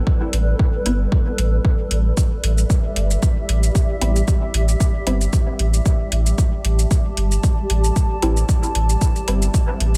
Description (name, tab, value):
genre	dub techno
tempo	114 BPM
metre	4/4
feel	swing 55% on 16ths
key	A minor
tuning	A4 = 440 Hz
part	granular cloud pad	sustained chords	0.0-10.0 s	G3 to A5	-30 LUFS	equal	built-in reverb, sidechain pumping
part	electronic kick drum	drums	0.1-9.7 s	none	-20 LUFS	equal	overdrive
part	warm sub bass	bass	0.3-10.0 s	G1 to A1	-20 LUFS	equal	sidechain pumping
part	electronic hi-hat and shaker	drums	0.3-10.0 s	none	-29 LUFS	equal	overdrive
part	filtered dub chord stab	stabs	0.9-9.9 s	G3 to E4	-29 LUFS	equal	phaser, sidechain pumping, dub echo
room	digital ambience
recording	none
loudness	-19 LUFS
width	mono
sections	0.0-10.0 A section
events	none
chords	0.0 Am7